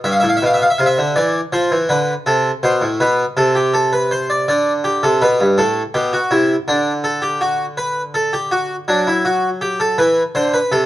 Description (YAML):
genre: classical, baroque-style two-part invention for harpsichord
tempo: 54 BPM (dotted quarters)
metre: 12/8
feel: straight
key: unclear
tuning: A4 = 440 Hz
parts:
  - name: harpsichord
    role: solo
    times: 0.0-10.9 s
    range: G2 to F5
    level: -14 LUFS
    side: equal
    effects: none
room: light reverb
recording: dark, warm production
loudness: -14 LUFS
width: side -14 dB against mid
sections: 0.0-10.9 A section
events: none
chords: 0.0 G7; 2.3 C5; 4.5 G; 6.7 D; 8.9 D7/F#